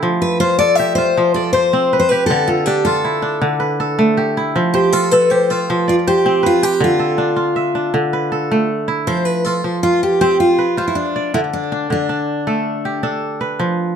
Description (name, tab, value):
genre	west african traditional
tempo	106 BPM (dotted quarters)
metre	12/8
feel	straight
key	F lydian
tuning	A4 = 441 Hz
part	kora	arpeggios	0.0-14.0 s	D3 to E5	-17 LUFS	right 1 dB	none
part	picked steel-string acoustic guitar	melody	0.2-13.0 s	D4 to E5	-16 LUFS	left 1 dB	slapback echo
room	light reverb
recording	dark, warm production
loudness	-14 LUFS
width	side -7 dB against mid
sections	0.0-9.1 A section; 9.1-14.0 B section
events	none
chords	0.0 F; 2.3 Dm; 4.6 F; 6.8 Dm; 9.1 F; 11.3 D5